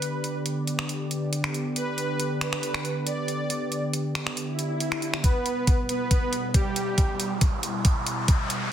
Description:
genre	heavy wobble dubstep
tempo	138 BPM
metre	4/4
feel	half-time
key	E minor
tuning	A4 = 440 Hz
part	soft supersaw	melody	0.0-7.3 s	G3 to D5	-30 LUFS	right 1 dB	phaser, dub echo
part	lush unison pad	sustained chords	0.0-8.7 s	B2 to F#5	-30 LUFS	equal	chorus, vintage 12-bit sampler grit, sidechain pumping
part	dubstep drum kit	drums	0.0-8.6 s	finger snaps, hi-hat	-29 LUFS	right 1 dB	studio reverb, soft clipping on snare
part	swell and riser	sound effects	4.5-8.7 s	none	-33 LUFS	equal	none
part	electronic kick drum	drums	5.2-8.4 s	none	-21 LUFS	equal	studio reverb
room	moderate digital room reverb, RT60 1.1 s, digital ambience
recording	dense, heavily limited modern master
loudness	-24 LUFS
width	side -10 dB against mid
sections	0.0-5.2 A section; 5.2-8.7 B section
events	swell 4.5-5.2; build-up 5.2-8.7; riser 5.2-8.7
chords	0.0 G; 5.2 Emadd9

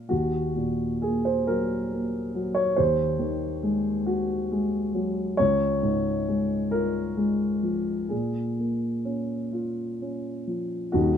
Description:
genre	neoclassical minimalist piano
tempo	42-46 BPM (dotted quarters)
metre	6/8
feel	rubato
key	unclear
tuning	A4 = 441 Hz
part	dark baby grand piano	solo	0.0-11.2 s	Eb1 to Db5	-24 LUFS	equal	none
room	moderate plate reverb, RT60 3.6 s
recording	minimal, uncompressed stereo recording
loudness	-24 LUFS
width	side -8 dB against mid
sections	0.0-10.9 A section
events	none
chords	0.1 Ebm; 2.8 Ab7/Eb; 5.4 Db; 8.1 Bbm7

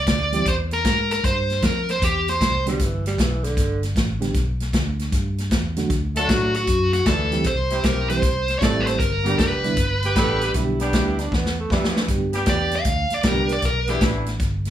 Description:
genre	electric blues shuffle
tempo	155 BPM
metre	4/4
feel	swing 66% on 8ths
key	G major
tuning	A4 = 440 Hz
part	dark smooth lead guitar	melody	0.0-2.6, 6.2-14.0 s	F#4 to F5	-22 LUFS	equal	overdrive
part	vintage muted fingered electric bass	bass	0.0-14.7 s	F1 to A2	-25 LUFS	equal	none
part	natural country drum kit	drums	0.1-14.7 s	hi-hat, kick drum, snare drum	-23 LUFS	equal	none
part	reed electric piano	accompaniment	0.3-13.5 s	D3 to G4	-25 LUFS	right 4 dB	fast tremolo
part	growling tenor saxophone	second line	2.7-3.8, 10.1-12.0 s	D3 to A4	-28 LUFS	right 4 dB	none
part	dark horn section	stabs	6.2-14.3 s	E3 to A4	-27 LUFS	left 2 dB	none
room	light reverb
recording	small room reverb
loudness	-19 LUFS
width	side -11 dB against mid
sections	0.0-12.1 A section; 12.1-14.7 B section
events	drum fill 11.3-12.1; lead electric guitar solo 12.1-14.7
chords	0.0 C; 2.8 G; 5.9 D; 7.5 C; 9.0 G

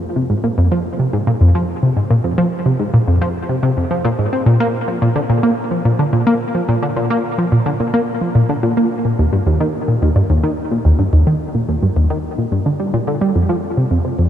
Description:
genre	ambient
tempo	108 BPM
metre	4/4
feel	straight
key	F dorian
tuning	A4 = 439 Hz
part	tight sequenced synth	solo	0.2-14.3 s	Eb2 to C4	-14 LUFS	equal	chorus, cassette tape, analog delay
room	moderate huge ambient reverb, RT60 8.5 s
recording	in a vast, echoing space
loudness	-14 LUFS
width	side -10 dB against mid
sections	0.0-14.3 A section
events	none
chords	none

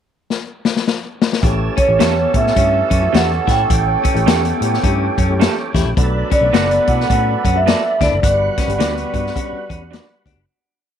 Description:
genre	uptempo 1960s-style soul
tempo	106 BPM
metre	4/4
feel	swing 61% on 8ths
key	A mixolydian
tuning	A4 = 440 Hz
part	swinging big-band drum kit	drums	0.3-10.4 s	hi-hat, kick drum, snare drum	-18 LUFS	left 2 dB	none
part	warm horn section	second line	1.4-10.2 s	E3 to B4	-26 LUFS	right 11 dB	none
part	dark upright piano	accompaniment	1.4-10.4 s	G3 to G4	-26 LUFS	left 10 dB	none
part	percussive tonewheel organ	sustained chords	1.4-10.5 s	G3 to B5	-28 LUFS	right 1 dB	overdrive, chorus vibrato, slow rotary speaker
part	vintage muted fingered electric bass	bass	1.4-10.4 s	F#1 to B2	-20 LUFS	right 1 dB	none
part	vibraphone with soft mallets	melody	1.8-10.2 s	C#5 to G5	-18 LUFS	right 2 dB	slapback echo
part	clean electric guitar	riff	1.8-10.4 s	B3 to E4	-26 LUFS	left 11 dB	none
part	electric guitar through a small old amp	stabs	2.0-10.1 s	B3 to E5	-24 LUFS	right 12 dB	none
room	moderate spring reverb, RT60 1.8 s, studio reverb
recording	1960s-style stereo with parts hard left and right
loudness	-14 LUFS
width	side -9 dB against mid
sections	0.0-1.4 pickup bar; 1.4-10.5 verse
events	drum fill 0.3-1.4; fade-out 8.2-10.5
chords	0.0 N.C.; 1.4 A7; 6.0 Bm7; 8.2 Gmaj7

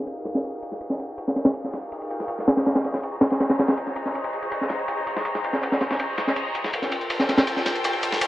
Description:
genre	drum and bass, jungle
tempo	162 BPM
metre	4/4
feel	straight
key	unclear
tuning	A4 = 440 Hz
part	bright symphonic string section	sustained chords	0.0-8.3 s	Eb4 to Bb5	-29 LUFS	left 1 dB	vintage 12-bit sampler grit, low-pass filter
part	crunchy breakbeat drum kit	drums	0.1-8.3 s	ride cymbal, snare drum	-23 LUFS	equal	high-pass filter on kick, high-pass filter on cymbals, high-pass filter on snare, high-pass filter on room
part	dusty soul sampler-style drum kit	drums	0.1-8.3 s	hi-hat, snare drum	-33 LUFS	left 1 dB	high-pass filter on snare, high-pass filter on hats
room	light reverb, studio reverb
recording	vinyl crackle, low-pass filter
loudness	-22 LUFS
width	side -15 dB against mid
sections	0.0-8.3 A section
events	filter sweep on string section 0.0-8.3; filter sweep 0.0-8.3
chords	0.0 Fm11; 3.0 Bbm11; 6.7 Gm11

